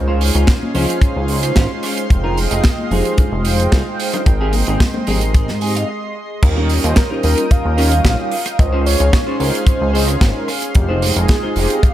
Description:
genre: nu-disco, nu disco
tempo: 111 BPM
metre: 4/4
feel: straight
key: unclear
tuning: A4 = 442 Hz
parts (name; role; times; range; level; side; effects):
- mellow synth brass; accompaniment; 0.0-11.9 s; G3 to G5; -23 LUFS; right 1 dB; chorus, cassette tape, sidechain pumping, analog delay
- lush unison pad; sustained chords; 0.0-11.9 s; Ab3 to Eb6; -26 LUFS; equal; chorus, vintage 12-bit sampler grit, sidechain pumping
- chorused synth bass; bass; 0.0-11.9 s; F1 to Ab2; -17 LUFS; equal; none
- semi-hollow electric guitar; riff; 0.1-11.8 s; C4 to Ab5; -24 LUFS; right 1 dB; lush chorus
- tight funk drum kit; drums; 0.2-11.9 s; crash cymbal, hi-hat, rim click, snare drum; -22 LUFS; right 3 dB; studio reverb
- kick drum; drums; 0.5-11.9 s; none; -13 LUFS; equal; studio reverb
- congas and bongos; percussion; 0.6-5.2 s; none; -26 LUFS; left 3 dB; none
- wide unison lead; melody; 7.0-11.9 s; Ab4 to F5; -22 LUFS; equal; tape echo
room: little or no reverb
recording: none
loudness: -13 LUFS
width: side -13 dB against mid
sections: 0.0-6.4 A section; 6.4-11.9 B section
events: clean electric guitar fill 5.3-6.4; break 5.9-6.4; drop 6.4-11.9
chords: 0.0 Dbmaj7; 2.1 Fm7; 4.3 Abmaj7; 6.4 Eb7; 8.6 Dbmaj7; 10.8 Fm7

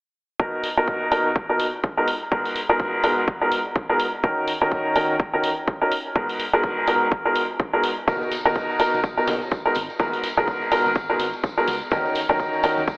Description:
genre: piano house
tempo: 125 BPM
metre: 4/4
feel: swing 58% on 16ths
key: G# minor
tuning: A4 = 440 Hz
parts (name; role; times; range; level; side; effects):
- clear upright piano; riff; 0.4-12.8 s; G#2 to A#4; -20 LUFS; equal; sidechain pumping, low-pass filter, dub echo
- electronic kick drum; drums; 0.4-13.0 s; none; -25 LUFS; equal; none
- electronic hi-hat; drums; 0.6-12.7 s; none; -32 LUFS; equal; none
- fingered electric bass; bass; 8.1-13.0 s; G#1 to F#2; -37 LUFS; equal; sidechain pumping
- congas and tambourine; percussion; 8.1-13.0 s; none; -33 LUFS; equal; none
room: moderate lush hall reverb, RT60 2.2 s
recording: heavily compressed radio sound, telephone sound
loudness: -20 LUFS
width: side -29 dB against mid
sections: 0.4-13.0 A section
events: none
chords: 0.4 Bmaj7; 2.1 G#m9; 4.2 D#m7; 5.9 G#m9; 8.1 Bmaj7; 9.8 G#m9; 11.9 D#m7

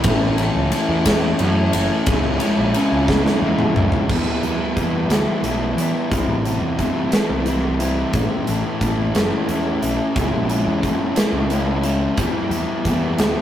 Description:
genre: quiet-loud alternative rock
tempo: 59 BPM (dotted quarters)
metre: 6/8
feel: straight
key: unclear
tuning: A4 = 440 Hz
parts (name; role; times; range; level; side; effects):
- fuzz guitar; riff; 0.0-13.4 s; A2 to E4; -20 LUFS; left 1 dB; distortion
- growling picked electric bass; bass; 0.0-13.3 s; F#1 to E3; -24 LUFS; equal; overdrive
- big rock drum kit; drums; 0.0-13.4 s; crash cymbal, hi-hat, kick drum, ride cymbal, snare drum, toms; -22 LUFS; equal; none
room: light reverb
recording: rough rehearsal-room recording, tube saturation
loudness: -17 LUFS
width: side -11 dB against mid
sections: 0.0-4.1 A section; 4.1-13.4 B section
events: drum fill 3.1-4.1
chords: 0.1 A; 2.1 C#m; 4.1 Em; 6.1 C; 8.1 A; 10.2 C#m; 12.2 Em

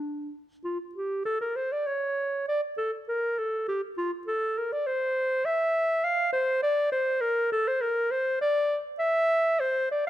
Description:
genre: classical, baroque-style fantasia for unaccompanied clarinet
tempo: 100 BPM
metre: 3/4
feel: rubato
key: D minor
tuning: A4 = 440 Hz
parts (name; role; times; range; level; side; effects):
- warm clarinet; solo; 0.0-10.1 s; D4 to F5; -25 LUFS; equal; none
room: light reverb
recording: close, detailed microphones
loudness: -25 LUFS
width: side -13 dB against mid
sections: 0.7-10.1 A section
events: none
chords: none

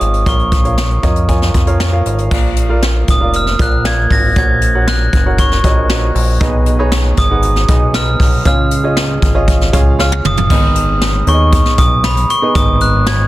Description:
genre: piano-driven pop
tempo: 117 BPM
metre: 4/4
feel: straight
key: unclear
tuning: A4 = 437 Hz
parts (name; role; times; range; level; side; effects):
- glockenspiel with hard plastic mallets; melody; 0.0-13.3 s; Cb6 to Bb6; -17 LUFS; equal; none
- clear upright piano; accompaniment; 0.0-13.3 s; Ab2 to Ab5; -19 LUFS; right 2 dB; none
- chorused synth bass; bass; 0.0-13.3 s; F1 to F2; -15 LUFS; equal; none
- jazz brush drum kit; drums; 0.0-13.2 s; crash cymbal, hi-hat, kick drum, snare drum, toms; -14 LUFS; equal; soft clipping on snare
room: small room ambience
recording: dense, heavily limited modern master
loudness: -10 LUFS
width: side -16 dB against mid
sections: 0.0-2.3 A section; 2.3-10.5 B section; 10.5-13.3 C section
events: drum fill 10.0-10.5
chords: 0.3 Bbm; 2.3 Bb; 4.4 Gb; 6.4 Abm; 8.5 Db; 10.5 Abm

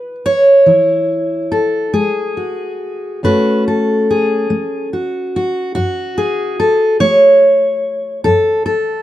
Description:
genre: folk, solo fingerstyle acoustic guitar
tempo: 47 BPM (dotted quarters)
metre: 6/8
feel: rubato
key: unclear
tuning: A4 = 438 Hz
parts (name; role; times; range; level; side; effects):
- fingerpicked steel-string acoustic guitar; solo; 0.0-9.0 s; F#2 to C#5; -12 LUFS; equal; none
room: light reverb, small room ambience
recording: dry, close 1970s-style studio recording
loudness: -12 LUFS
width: side -13 dB against mid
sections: 0.0-9.0 A section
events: none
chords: 0.0 C#m/E; 3.2 F#m

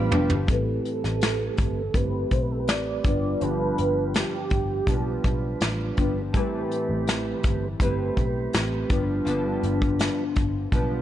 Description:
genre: indie pop, bedroom pop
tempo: 82 BPM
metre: 4/4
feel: straight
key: A minor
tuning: A4 = 437 Hz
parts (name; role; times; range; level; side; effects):
- warm velvety synth lead; melody; 0.0-5.9 s; G4 to D5; -30 LUFS; right 3 dB; wide subtle chorus, low-pass filter, analog delay
- mellow tonewheel organ; accompaniment; 0.0-11.0 s; G3 to B4; -30 LUFS; right 5 dB; slow rotary speaker, cassette tape, low-pass filter
- nylon-string guitar; accompaniment; 0.0-11.0 s; G2 to B4; -30 LUFS; left 4 dB; analog chorus, vibrato effect, low-pass filter
- ensemble organ-string; sustained chords; 0.0-0.5 s; G4 to B5; -35 LUFS; left 1 dB; ensemble chorus
- vintage muted picked electric bass; bass; 0.0-11.0 s; F1 to B1; -29 LUFS; equal; none
- soft brush drum kit; drums; 0.1-10.9 s; hi-hat, kick drum, snare drum, toms; -26 LUFS; equal; vintage 12-bit sampler grit
room: studio reverb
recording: nothing above 10.4 kHz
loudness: -22 LUFS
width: side -12 dB against mid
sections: 0.5-11.0 A section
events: drum fill 0.0-0.5; filter sweep 0.5-11.0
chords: 0.5 Am9; 3.0 G7; 6.3 Am9; 8.9 G7

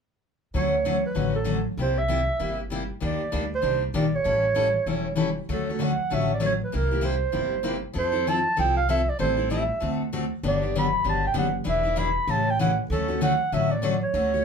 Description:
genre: acoustic string swing (jazz manouche)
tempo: 194 BPM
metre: 4/4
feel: swing 60% on 8ths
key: D major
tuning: A4 = 440 Hz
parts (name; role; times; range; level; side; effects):
- picked steel-string acoustic guitar; accompaniment; 0.5-14.4 s; C3 to B4; -26 LUFS; left 4 dB; none
- upright bass; bass; 0.5-14.4 s; E1 to F2; -30 LUFS; equal; none
- dark clarinet; melody; 0.6-14.4 s; A4 to B5; -25 LUFS; right 3 dB; none
room: wet small room ambience, RT60 0.5 s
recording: heard from further back in the room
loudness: -22 LUFS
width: side -6 dB against mid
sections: 0.5-5.5 A section; 5.5-14.4 B section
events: none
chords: 0.5 Dmaj7; 1.8 C7; 3.0 Ebmaj7; 4.3 A7; 5.5 Dmaj7; 6.7 C7; 8.0 Fmaj7; 9.2 Am7; 9.8 D7; 10.4 Gmaj7; 11.7 Em7; 12.3 A7; 12.9 Dmaj7

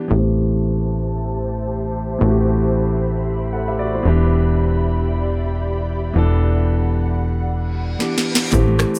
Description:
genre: afrobeats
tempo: 114 BPM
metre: 4/4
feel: swing 58% on 16ths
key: A dorian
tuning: A4 = 440 Hz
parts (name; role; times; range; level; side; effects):
- warm concert grand piano; accompaniment; 0.0-9.0 s; E3 to F#5; -24 LUFS; equal; low-pass filter
- ethereal airy pad; sustained chords; 0.7-8.5 s; G4 to B5; -31 LUFS; equal; ensemble chorus, built-in reverb, low-pass filter
- plucky analog bass; bass; 0.1-8.9 s; E1 to A1; -21 LUFS; equal; none
- reverse cymbal; sound effects; 7.7-8.5 s; none; -30 LUFS; equal; none
- afro-pop drum kit; drums; 8.0-9.0 s; finger snaps, kick drum, rim click, shaker, snare drum; -21 LUFS; equal; none
- congas; percussion; 8.5-8.8 s; none; barely audible; none; none
room: light reverb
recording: none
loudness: -19 LUFS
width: mono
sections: 0.1-8.5 A section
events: filter sweep 0.1-8.5; reverse cymbal 7.7-8.5; drum fill 8.0-8.5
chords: 0.1 Am7; 4.1 Em7

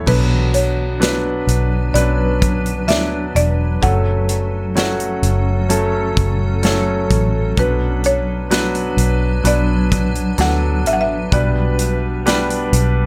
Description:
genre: pop ballad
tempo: 64 BPM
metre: 4/4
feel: straight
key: unclear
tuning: A4 = 440 Hz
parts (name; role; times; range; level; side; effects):
- clear concert grand piano; accompaniment; 0.0-13.1 s; B2 to D5; -23 LUFS; equal; none
- granular cloud pad; sustained chords; 0.0-13.1 s; F#3 to B4; -28 LUFS; equal; built-in reverb
- buzzing marimba with medium mallets; melody; 0.1-12.7 s; B4 to F#5; -24 LUFS; equal; tape echo
- vintage muted fingered electric bass; bass; 0.1-13.1 s; E1 to D2; -21 LUFS; equal; none
- modern studio drum kit; drums; 0.1-12.9 s; crash cymbal, hi-hat, kick drum, snare drum; -23 LUFS; equal; none
room: little or no reverb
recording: none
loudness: -17 LUFS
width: mono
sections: 0.1-13.1 A section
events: none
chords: 0.1 Bm; 3.8 F#m; 7.6 Bm; 11.3 G/B

